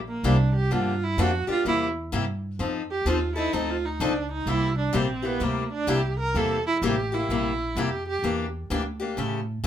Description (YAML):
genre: acoustic string swing (jazz manouche)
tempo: 128 BPM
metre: 4/4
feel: swing 63% on 8ths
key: C mixolydian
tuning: A4 = 440 Hz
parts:
  - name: upright bass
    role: bass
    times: 0.0-9.7 s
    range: A1 to A2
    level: -28 LUFS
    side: equal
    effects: none
  - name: clear viola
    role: melody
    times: 0.1-8.2 s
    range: Bb3 to Bb4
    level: -27 LUFS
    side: right 3 dB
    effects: none
  - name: picked steel-string acoustic guitar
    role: accompaniment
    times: 0.2-9.7 s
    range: C3 to A4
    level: -27 LUFS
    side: left 4 dB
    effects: none
room: light reverb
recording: minimal, uncompressed stereo recording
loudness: -23 LUFS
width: side -10 dB against mid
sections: 0.0-9.7 A section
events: viola solo 0.0-9.7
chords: 0.0 C7; 0.7 Gm7; 1.7 C7; 2.6 F7; 4.5 C7; 8.2 Em7b5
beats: 0.24 | 0.71 1.19 1.66 2.12 | 2.60 3.07 3.54 4.01 | 4.48 4.95 5.42 5.89 | 6.36 6.83 7.30 7.77 | 8.24 8.71 9.18 9.65